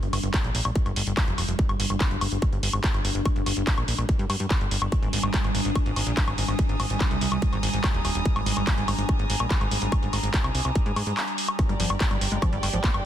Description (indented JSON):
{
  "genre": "psychedelic trance",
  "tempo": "144 BPM",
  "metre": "4/4",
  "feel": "straight",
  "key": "G phrygian",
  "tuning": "A4 = 439 Hz",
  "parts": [
    { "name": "evolving wavetable pad", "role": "sustained chords", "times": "0.0-13.1 s", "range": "G3 to D4", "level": "-32 LUFS", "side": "right 1 dB", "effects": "phaser, built-in reverb, sidechain pumping" },
    { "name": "plucky analog bass", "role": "bass", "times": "0.0-13.0 s", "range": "Eb1 to Ab2", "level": "-27 LUFS", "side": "equal", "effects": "tube saturation" },
    { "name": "techno drum kit", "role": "drums", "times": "0.0-13.0 s", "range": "handclaps, hi-hat, woodblock", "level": "-29 LUFS", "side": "left 1 dB", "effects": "none" },
    { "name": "electronic kick drum", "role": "drums", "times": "0.3-12.9 s", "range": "none", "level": "-25 LUFS", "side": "equal", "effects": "distortion" },
    { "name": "warm studio string section", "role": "texture", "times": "4.9-13.1 s", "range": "G4 to Eb6", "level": "-33 LUFS", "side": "equal", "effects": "sidechain pumping" },
    { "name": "liquid acid bass", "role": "riff", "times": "11.7-12.9 s", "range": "F3 to Bb3", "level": "-32 LUFS", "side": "moving between left 5 dB and right 3 dB", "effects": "chorus, auto-pan, sidechain pumping, dub echo" }
  ],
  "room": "little or no reverb",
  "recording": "dense, heavily limited modern master",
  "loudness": "-22 LUFS",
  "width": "side -11 dB against mid",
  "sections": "0.0-13.1 A section",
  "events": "none",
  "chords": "0.0 G5; 4.9 Ab5; 11.6 G5"
}